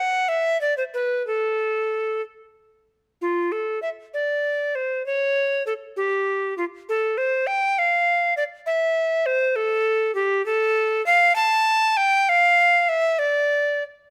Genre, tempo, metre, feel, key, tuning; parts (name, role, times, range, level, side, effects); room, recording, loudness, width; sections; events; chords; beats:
classical, baroque-style fantasia for unaccompanied recorder; 66 BPM (dotted quarters); 6/8; rubato; A minor; A4 = 438 Hz
tenor recorder; solo; 0.0-13.8 s; F4 to A5; -21 LUFS; equal
light reverb; close, detailed microphones; -22 LUFS; mono
0.0-3.2 A section; 3.2-14.1 A section
0.28 | 1.25 2.23 | 3.21 4.14 | 5.05 5.96 | 6.87 7.77 | 8.67 9.57 | 10.46 11.36 | 12.27 13.19